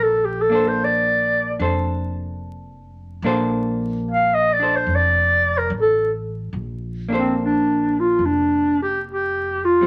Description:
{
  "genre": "jazz ballad",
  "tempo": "73 BPM",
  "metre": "4/4",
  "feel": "swing 68% on 8ths",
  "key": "Bb major",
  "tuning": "A4 = 440 Hz",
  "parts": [
    { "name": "breathy clarinet", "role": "melody", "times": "0.0-9.9 s", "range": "C4 to F5", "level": "-20 LUFS", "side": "equal", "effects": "none" },
    { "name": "upright bass", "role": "bass", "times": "0.0-9.9 s", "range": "F1 to Bb1", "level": "-30 LUFS", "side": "equal", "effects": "none" },
    { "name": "vintage hollow-body jazz guitar", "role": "accompaniment", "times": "0.5-9.9 s", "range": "G3 to C5", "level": "-27 LUFS", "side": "equal", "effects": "none" }
  ],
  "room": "moderate studio reverb, RT60 0.7 s",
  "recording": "vinyl crackle",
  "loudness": "-20 LUFS",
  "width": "mono",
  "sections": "0.0-6.5 A section; 6.5-9.9 B section",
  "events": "clarinet solo 0.0-6.5",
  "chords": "0.0 Bbmaj9"
}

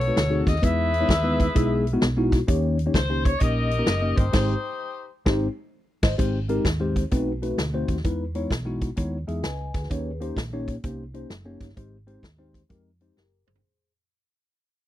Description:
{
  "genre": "uptempo gospel",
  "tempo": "129 BPM",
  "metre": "4/4",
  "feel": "swing 65% on 8ths",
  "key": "unclear",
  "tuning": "A4 = 440 Hz",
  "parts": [
    { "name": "clear saxophone section", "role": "melody", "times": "0.0-5.1 s", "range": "Eb4 to E5", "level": "-26 LUFS", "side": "left 2 dB", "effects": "none" },
    { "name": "mellow tine electric piano", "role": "accompaniment", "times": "0.0-13.9 s", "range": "Ab2 to G#5", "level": "-26 LUFS", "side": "left 1 dB", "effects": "phaser" },
    { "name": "hollow-body short-scale fingered electric bass", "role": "bass", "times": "0.0-13.6 s", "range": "Gb1 to F2", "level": "-27 LUFS", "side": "right 1 dB", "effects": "none" },
    { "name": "swinging big-band drum kit", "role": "drums", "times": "0.0-13.6 s", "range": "crash cymbal, hi-hat, kick drum, snare drum, toms", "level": "-24 LUFS", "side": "equal", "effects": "none" }
  ],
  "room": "small room ambience",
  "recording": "dry, close 1970s-style studio recording",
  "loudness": "-22 LUFS",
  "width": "side -13 dB against mid",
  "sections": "0.0-6.2 A section; 6.2-13.6 B section",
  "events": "band accent 4.3-6.2; fade-out 6.2-13.6; tine electric piano fill 9.0-9.9; drum fill 13.2-13.6",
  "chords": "0.0 B7b9; 0.6 Emaj7; 2.5 Eb7; 4.3 Abmaj7; 7.1 B7b9; 8.1 Emaj7; 9.9 Eb7; 11.8 Abmaj7"
}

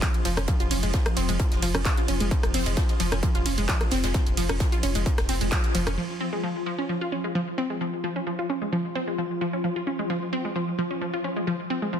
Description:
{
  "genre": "driving peak-time techno",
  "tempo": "131 BPM",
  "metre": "4/4",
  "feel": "straight",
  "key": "F minor",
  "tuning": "A4 = 439 Hz",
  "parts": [
    { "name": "wide unison pluck", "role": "riff", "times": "0.0-12.0 s", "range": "F3 to F4", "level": "-28 LUFS", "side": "equal", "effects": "vintage 12-bit sampler grit, sidechain pumping, ping-pong delay" },
    { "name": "saturated sub bass", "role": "bass", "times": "0.0-6.0 s", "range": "F1", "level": "-28 LUFS", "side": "equal", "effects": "tube saturation, sidechain pumping, low-pass filter" },
    { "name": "swarming drone", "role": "drone", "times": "0.0-12.0 s", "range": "F3 to F4", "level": "-32 LUFS", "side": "left 1 dB", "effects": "built-in reverb, sidechain pumping" },
    { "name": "electronic kick drum", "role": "drums", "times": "0.0-5.6 s", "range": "none", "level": "-24 LUFS", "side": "equal", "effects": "distortion, overdrive" },
    { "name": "techno drum kit", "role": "drums", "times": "0.0-6.0 s", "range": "handclaps, hi-hat, ride cymbal, rim click", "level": "-31 LUFS", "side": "right 1 dB", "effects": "overdrive" },
    { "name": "tight funk drum kit", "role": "drums", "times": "0.0-5.9 s", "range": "hi-hat, snare drum", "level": "-39 LUFS", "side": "right 3 dB", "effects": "none" }
  ],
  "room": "moderate stone room reverb, RT60 1.1 s",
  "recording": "dense, heavily limited modern master",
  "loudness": "-23 LUFS",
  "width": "side -8 dB against mid",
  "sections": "0.0-6.0 A section; 6.0-12.0 B section",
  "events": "drop 0.0-6.0; band accent 5.5",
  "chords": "none"
}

